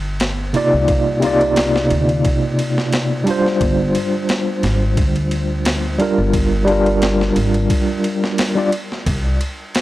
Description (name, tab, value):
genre	trip hop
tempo	88 BPM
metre	4/4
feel	swing 54% on 16ths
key	G phrygian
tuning	A4 = 440 Hz
part	upright bass	bass	0.0-9.4 s	G1 to D2	-20 LUFS	equal	tube saturation
part	boom bap sampler-style drum kit	drums	0.2-9.8 s	kick drum, ride cymbal, snare drum	-22 LUFS	equal	overdrive
part	tine electric piano	accompaniment	0.5-8.7 s	C3 to D5	-16 LUFS	equal	slow stereo tremolo, tape echo
room	little or no reverb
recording	dry, gritty hardware recording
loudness	-15 LUFS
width	side -16 dB against mid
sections	0.0-9.8 A section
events	none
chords	0.0 Cm11; 3.6 Gm7; 9.1 N.C.